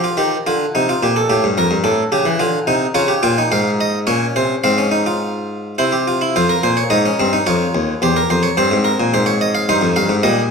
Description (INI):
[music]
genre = classical, baroque-style 3-part fugue for harpsichord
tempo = 108 BPM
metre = 3/4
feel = straight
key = F minor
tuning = A4 = 440 Hz
[part]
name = harpsichord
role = solo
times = 0.0-10.5 s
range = Eb2 to G5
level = -14 LUFS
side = equal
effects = none
[sound]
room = wet recital hall reverb, RT60 1.5 s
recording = none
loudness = -14 LUFS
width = side -5 dB against mid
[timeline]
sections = 0.0-6.3 A section; 6.3-10.5 B section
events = none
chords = 0.0 G5; 0.8 Cm; 1.3 A7; 2.4 Dm; 3.0 Db; 4.1 Bbmadd9; 4.6 Fm/Ab; 5.8 C; 6.3 Fm; 7.5 Dbadd9; 8.0 C7/E; 9.1 Fm/Ab; 9.7 Cm